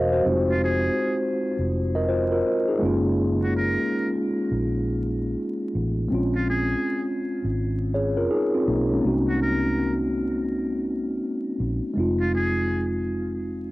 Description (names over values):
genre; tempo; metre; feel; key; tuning
lo-fi hip hop; 82 BPM; 4/4; swing 63% on 16ths; unclear; A4 = 442 Hz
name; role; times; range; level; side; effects
mellow tine electric piano; accompaniment; 0.0-13.7 s; Gb3 to F5; -23 LUFS; equal; medium stereo tremolo, cassette tape
vintage muted fingered electric bass; bass; 0.0-13.7 s; E1 to C2; -27 LUFS; equal; transformer saturation
trumpet with metal mute; melody; 0.5-12.9 s; F4 to Bb4; -31 LUFS; equal; cassette tape, analog delay
room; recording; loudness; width
moderate booth ambience, RT60 0.2 s; home recording on cassette, vinyl crackle; -22 LUFS; side -19 dB against mid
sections
0.0-9.0 A section; 9.0-13.7 B section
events
none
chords
0.2 Fm7; 2.8 Gbmaj9; 6.1 Bbm7; 9.0 Cm7b5; 12.0 Fm7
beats
| 0.25 0.98 1.71 2.44 | 3.18 3.91 4.64 5.37 | 6.10 6.83 7.57 8.30 | 9.03 9.76 10.49 11.23 | 11.96 12.69 13.42